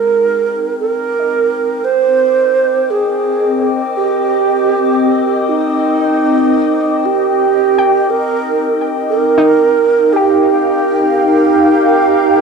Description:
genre	ambient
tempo	58 BPM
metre	4/4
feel	straight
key	C minor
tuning	A4 = 440 Hz
part	breathy mellow alto flute	melody	0.0-12.4 s	Eb4 to C5	-13 LUFS	right 5 dB	cassette tape, tape echo
part	soft additive organ-like pad	sustained chords	0.0-12.4 s	C4 to D6	-16 LUFS	left 1 dB	ensemble chorus, built-in reverb, cassette tape
part	soft round pluck	arpeggios	0.0-12.4 s	Eb4 to G5	-18 LUFS	left 3 dB	chorus, cassette tape, tape echo
part	glass harmonica	texture	0.0-12.4 s	Bb4 to G5	-22 LUFS	left 10 dB	stereo widening, cassette tape
room	wet small room reverb, RT60 0.5 s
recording	home recording on cassette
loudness	-11 LUFS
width	side -5 dB against mid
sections	0.0-12.4 A section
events	fade-in on ambient pad 0.0-12.4; fade-in on synth pluck 0.0-12.4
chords	0.0 Cm7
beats	0.81 1.85 2.90 | 3.95 4.98 6.02 7.05 | 8.09 9.12 10.15 11.19 | 12.24

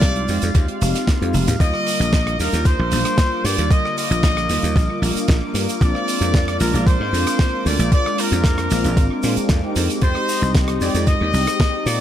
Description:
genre	nu-disco, nu disco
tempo	114 BPM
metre	4/4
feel	straight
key	F dorian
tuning	A4 = 436 Hz
part	bright trumpet section	melody	0.0-12.0 s	Bb4 to Eb5	-24 LUFS	left 1 dB	tape echo
part	mellow synth brass	accompaniment	0.0-12.0 s	D3 to G4	-24 LUFS	equal	chorus, sidechain pumping, tape echo
part	lush unison pad	sustained chords	0.0-12.0 s	Bb3 to D6	-30 LUFS	left 1 dB	chorus, sidechain pumping
part	dry thumbed slap bass	bass	0.0-12.0 s	F1 to Bb2	-21 LUFS	equal	none
part	damped 70s drum kit	drums	0.0-12.0 s	hi-hat, rim click, shaker, snare drum, toms	-25 LUFS	right 2 dB	small room ambience, tape echo
part	electronic kick drum	drums	0.0-11.7 s	none	-17 LUFS	equal	small room ambience
room	light reverb, small room ambience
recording	echo-heavy mix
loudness	-16 LUFS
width	side -11 dB against mid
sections	0.0-12.0 A section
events	filter sweep on analog polysynth 0.0-12.0; drum fill 1.3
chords	0.0 Fm7; 1.6 Ebmaj7; 5.8 Bb7; 9.8 Fm7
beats	0.02 0.55 1.07 | 1.60 2.13 2.65 3.18 | 3.71 4.23 4.76 5.29 | 5.81 6.34 6.86 7.39 | 7.92 8.44 8.97 9.49 | 10.02 10.55 11.07 11.60

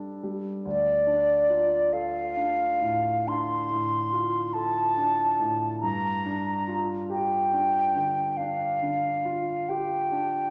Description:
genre	classical, impressionist duo for flute and grand piano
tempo	47 BPM (dotted quarters)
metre	12/8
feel	rubato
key	G minor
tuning	A4 = 440 Hz
part	clear concert grand piano	accompaniment	0.0-10.5 s	D2 to A4	-34 LUFS	equal	none
part	mellow concert flute	melody	0.7-10.5 s	D5 to C6	-27 LUFS	equal	none
room	moderate scoring stage reverb, RT60 2.0 s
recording	none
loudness	-26 LUFS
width	mono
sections	0.0-10.5 A section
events	none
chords	0.0 Csus2/G (rootless); 0.6 Dm7; 5.8 Gm7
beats	| 0.65 1.92 3.27 4.54 | 5.82 7.11 8.38 9.69

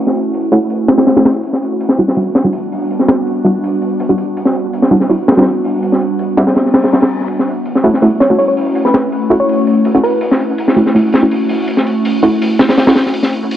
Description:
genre	drum and bass, jungle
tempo	164 BPM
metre	4/4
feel	straight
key	F# phrygian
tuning	A4 = 438 Hz
part	ethereal airy pad	sustained chords	0.0-13.6 s	G3 to F#4	-16 LUFS	equal	ensemble chorus, built-in reverb
part	filtered dub chord stab	stabs	0.0-12.9 s	G3 to F#4	-15 LUFS	right 1 dB	chorus, dub echo
part	crunchy breakbeat drum kit	drums	0.1-13.6 s	hi-hat, snare drum	-13 LUFS	equal	high-pass filter on hats, high-pass filter on snare, high-pass filter on room
part	reverse cymbal	sound effects	6.7-7.3 s	none	-30 LUFS	left 6 dB	none
part	bell-like FM electric piano	melody	8.2-10.3 s	B4 to C#5	-16 LUFS	equal	chorus, phaser, dub echo
room	moderate lush hall reverb, RT60 1.7 s, small room ambience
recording	dark, warm production, vinyl crackle, low-pass filter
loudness	-10 LUFS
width	side -11 dB against mid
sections	0.0-13.6 A section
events	filter sweep on synth stab 0.0-13.6; filter sweep 0.0-13.6; reverse cymbal 6.7-7.3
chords	0.0 F#m7; 1.4 Em9/G; 7.3 F#m7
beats	0.34 0.70 1.07 | 1.44 1.80 2.17 2.53 | 2.90 3.27 3.63 4.00 | 4.36 4.73 5.09 5.46 | 5.83 6.19 6.56 6.92 | 7.29 7.66 8.02 8.39 | 8.75 9.12 9.49 9.85 | 10.22 10.58 10.95 11.31 | 11.68 12.05 12.41 12.78 | 13.14 13.51

